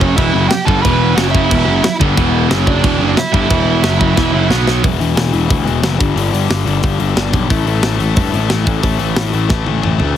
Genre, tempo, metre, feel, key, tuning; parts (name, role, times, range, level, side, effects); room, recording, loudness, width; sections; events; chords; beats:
punk rock; 180 BPM; 4/4; straight; E minor; A4 = 435 Hz
high-gain lead guitar; melody; 0.0-4.5 s; C#4 to B5; -18 LUFS; right 3 dB; distortion
cranked stack guitar; riff; 0.0-10.2 s; E2 to B3; -18 LUFS; left 12 dB; overdrive
sludgy distorted guitar; riff; 0.0-4.8 s; E2 to B3; -22 LUFS; right 1 dB
tight distorted guitar; riff; 0.0-4.8 s; E2 to B3; -18 LUFS; right 14 dB; distortion
fuzz picked electric bass; bass; 0.0-10.2 s; E1 to G2; -16 LUFS; equal; overdrive
tight metal drum kit; drums; 0.0-10.1 s; crash cymbal, hi-hat, kick drum, snare drum, toms; -18 LUFS; equal
little or no reverb; heavily compressed radio sound; -12 LUFS; side -10 dB against mid
0.0-4.8 A section; 4.8-10.2 B section
drum fill 4.2-4.8, 9.5-10.2
0.2 Em; 1.2 F#5; 1.5 Em; 2.5 F#5; 2.8 Em; 3.8 F#5; 4.2 E5; 4.5 B5; 4.8 E5; 6.0 G5; 7.5 A5
0.17 0.50 | 0.84 1.17 1.50 1.84 | 2.17 2.50 2.84 3.17 | 3.50 3.84 4.17 4.50 | 4.84 5.17 5.50 5.84 | 6.17 6.51 6.84 7.17 | 7.50 7.84 8.17 8.50 | 8.84 9.17 9.50 9.83